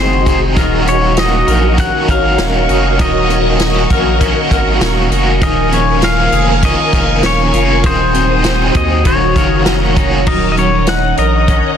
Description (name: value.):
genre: dream pop.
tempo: 99 BPM.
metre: 4/4.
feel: straight.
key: Eb minor.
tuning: A4 = 440 Hz.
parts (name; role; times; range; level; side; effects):
pedal steel guitar; melody; 0.0-11.8 s; C5 to Gb5; -17 LUFS; left 3 dB; plate reverb, tape echo.
cranked stack guitar; accompaniment; 0.0-10.8 s; Eb3 to Ab4; -18 LUFS; right 2 dB; overdrive, tremolo, analog chorus, plate reverb.
phased string machine; sustained chords; 0.0-11.8 s; Gb4 to Eb6; -18 LUFS; equal; ensemble chorus, phaser, plate reverb.
clean electric guitar; arpeggios; 0.0-11.8 s; Eb3 to Bb4; -18 LUFS; left 3 dB; analog chorus, plate reverb, tape echo.
saturated sub bass; bass; 0.0-11.6 s; Eb1 to Eb2; -16 LUFS; equal; none.
vibraphone with soft mallets; texture; 0.0-11.8 s; Db5 to Ab5; -27 LUFS; right 3 dB; plate reverb, tape echo.
vintage drum kit; drums; 0.3-11.6 s; crash cymbal, hi-hat, kick drum, snare drum, tambourine; -17 LUFS; equal; none.
room: light reverb.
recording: dense, heavily limited modern master.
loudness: -10 LUFS.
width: side -8 dB against mid.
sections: 0.0-10.3 A section; 10.3-11.8 B section.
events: none.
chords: 0.0 Ab7; 0.6 Ebm7; 5.4 Bbm7/Eb; 7.8 Ab7/Eb; 9.1 Ebm7.